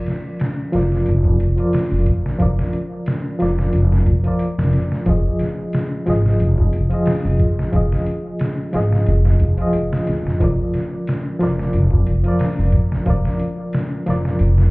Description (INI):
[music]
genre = trip hop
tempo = 90 BPM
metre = 4/4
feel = swing 53% on 16ths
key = unclear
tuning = A4 = 440 Hz
[part]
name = barky reed electric piano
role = accompaniment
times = 0.0-14.7 s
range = F3 to Eb5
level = -21 LUFS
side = equal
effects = fast tremolo, vintage 12-bit sampler grit, low-pass filter, tape echo
[part]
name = trip hop sampler-style drum kit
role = drums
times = 0.1-14.7 s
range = hi-hat, kick drum, snare drum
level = -21 LUFS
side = equal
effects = none
[part]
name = upright bass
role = bass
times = 0.7-14.7 s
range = F1 to F2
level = -17 LUFS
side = equal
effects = none
[sound]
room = light reverb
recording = heard muffled through a wall, club reverb, EQ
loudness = -16 LUFS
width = side -25 dB against mid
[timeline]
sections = 0.0-14.7 A section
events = filter sweep on reed electric piano 0.0-14.7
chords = 0.0 Bb/F; 5.1 Fm7; 10.4 Bb/F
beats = 0.40 1.07 1.74 | 2.40 3.07 3.74 4.40 | 5.07 5.74 6.40 7.07 | 7.74 8.40 9.07 9.74 | 10.40 11.07 11.74 12.40 | 13.07 13.74 14.40